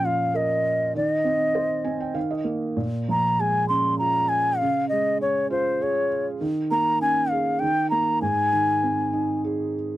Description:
children's music, lullaby; 99 BPM; 3/4; straight; A4 = 440 Hz
bansuri; melody; 0.0-9.4 s; C5 to C6; -22 LUFS; left 1 dB
felt-muted upright piano; accompaniment; 0.0-10.0 s; Ab2 to Ab5; -26 LUFS; right 2 dB
little or no reverb; dry, close 1970s-style studio recording; -21 LUFS; side -15 dB against mid
0.0-10.0 A section
felt piano fill 1.6-2.8
0.0 Bbm; 0.9 Eb6; 2.2 Eb5; 2.8 Bbm7; 4.6 Db; 6.4 Eb7sus4; 7.6 Eb; 8.2 Ab

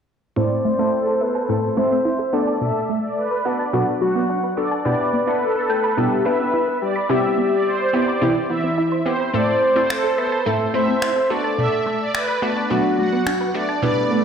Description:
dance-pop; 107 BPM; 4/4; straight; A dorian; A4 = 440 Hz
soft octave-layered synth lead; melody; 0.4-14.2 s; E4 to C5; -21 LUFS; left 2 dB; chorus, low-pass filter, digital delay
supersaw pad; melody; 0.4-13.9 s; A4 to F#5; -24 LUFS; right 2 dB; low-pass filter
glassy wavetable pluck; accompaniment; 0.4-14.1 s; B2 to C5; -24 LUFS; equal; chorus, phaser, low-pass filter
tight sequenced synth; arpeggios; 0.4-14.2 s; A2 to B5; -26 LUFS; right 1 dB; chorus, low-pass filter, digital delay
electronic finger snaps; drums; 9.9-13.4 s; -28 LUFS; equal
swell; sound effects; 14.0-14.2 s; -21 LUFS; right 8 dB
moderate plate reverb, RT60 1.8 s; played on a big sound system in a bare room, stone room reverb; -18 LUFS; side -7 dB against mid
0.4-14.2 A section
filter sweep 0.4-14.2; swell 14.0
0.4 Am; 2.3 Bm7; 4.9 Em7/B; 7.1 Cmaj7; 9.3 Am; 11.3 Bm7

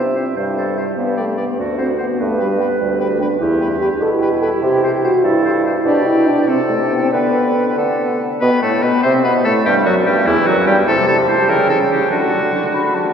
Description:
quick classical-period movement for wind quintet; 98 BPM (dotted quarters); 6/8; straight; G major from 3.4 s; A4 = 441 Hz
bright oboe; second line; 0.0-13.1 s; E4 to D5; -22 LUFS; left 1 dB
clear French horn; accompaniment; 0.0-13.1 s; E3 to A4; -18 LUFS; equal
clear clarinet; accompaniment; 0.0-13.1 s; E3 to E5; -21 LUFS; right 3 dB
warm bassoon; bass; 0.0-13.1 s; D2 to D3; -19 LUFS; right 1 dB
concert flute; melody; 0.2-13.1 s; D5 to B5; -25 LUFS; left 3 dB
wet cathedral reverb, RT60 6.0 s; heard from further back in the room; -13 LUFS; side -7 dB against mid
0.0-8.4 A section; 8.4-13.1 B section
0.0 C; 1.0 G5; 1.6 D7; 2.2 G; 3.4 Em; 4.6 C; 5.9 G/B; 6.5 Am7/C; 7.1 G/D; 8.4 G; 9.0 Amadd9; 9.7 G5; 10.9 Am7/C; 11.5 C#dim; 12.1 D

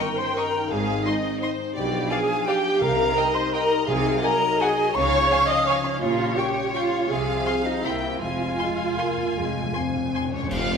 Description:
classical, orchestral ballroom waltz; 149-182 BPM; 3/4; rubato; F minor; A4 = 440 Hz
rich chamber violin section; melody; 0.0-10.8 s; C5 to Ab5; -31 LUFS; left 3 dB
bright silver concert flute; second line; 0.0-10.1 s; Db5 to Eb6; -27 LUFS; left 1 dB
rich chamber violin section; second line; 0.0-10.2 s; D5 to Db6; -32 LUFS; left 3 dB
dark studio viola section; accompaniment; 0.0-10.1 s; Db4 to Eb5; -24 LUFS; right 2 dB
dark French horn section; sustained chords; 0.0-10.5 s; Eb3 to Eb4; -31 LUFS; left 3 dB
concert harp; arpeggios; 0.0-10.8 s; G2 to F5; -33 LUFS; left 7 dB
warm chamber cello section; bass; 0.7-10.8 s; F2 to Db3; -34 LUFS; right 3 dB
warm chamber double bass section; bass; 0.7-10.8 s; F1 to Db2; -34 LUFS; right 2 dB
timpani; percussion; 2.8-4.4, 8.2-10.8 s; F2 to C3; -33 LUFS; right 1 dB
cymbal swell, clash cymbals and concert bass drum; percussion; 8.2-10.8 s; -36 LUFS; equal
clear tuba; bass; 10.5-10.8 s; F1; -29 LUFS; right 2 dB
wet scoring stage reverb, RT60 1.7 s; minimal, uncompressed stereo recording; -21 LUFS; side -6 dB against mid
0.0-10.5 A section
timpani fill 8.2-10.5; band accent 10.5
0.0 Eb7/G; 0.7 Ab; 1.8 G7/B; 2.8 Cm; 3.9 Ab7/C; 5.0 Db; 6.0 Gdim/Bb; 7.1 Fm/C; 7.8 C7; 8.2 Fm

